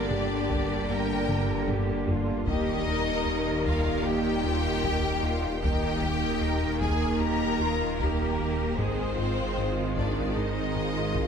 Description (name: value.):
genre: cinematic, hybrid orchestral and electronic film score.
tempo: 76 BPM.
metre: 4/4.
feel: straight.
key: unclear.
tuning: A4 = 440 Hz.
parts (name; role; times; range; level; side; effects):
clear symphonic violin section; melody; 0.0-11.3 s; Bb4 to Bb5; -34 LUFS; left 4 dB; none.
bright symphonic violin section; second line; 0.0-11.3 s; Bb3 to Bb4; -36 LUFS; left 3 dB; none.
clear symphonic viola section; accompaniment; 0.0-11.3 s; D3 to Bb3; -33 LUFS; right 2 dB; none.
hollow soft pad; sustained chords; 0.0-11.3 s; Eb3 to Eb5; -36 LUFS; left 1 dB; chorus.
warm French horn section; sustained chords; 0.0-11.3 s; Eb3 to Eb4; -34 LUFS; left 4 dB; none.
detuned saw bass; bass; 0.0-11.3 s; Eb1 to Ab1; -36 LUFS; equal; none.
rich symphonic double bass section; bass; 0.0-11.3 s; G1 to Eb2; -34 LUFS; right 5 dB; none.
warm symphonic cello section; bass; 0.0-11.3 s; Eb4 to Bb4; -35 LUFS; right 1 dB; none.
rubbery square bass; riff; 0.1-11.3 s; Eb2 to Ab2; -33 LUFS; left 1 dB; none.
taiko ensemble; drums; 0.1-11.3 s; none; -35 LUFS; equal; none.
room: moderate concert hall reverb, RT60 2.0 s.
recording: none.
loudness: -25 LUFS.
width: side -7 dB against mid.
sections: 0.0-11.3 A section.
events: drum fill 1.3-2.5.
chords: 0.0 Gm; 2.5 Eb; 8.8 Ab.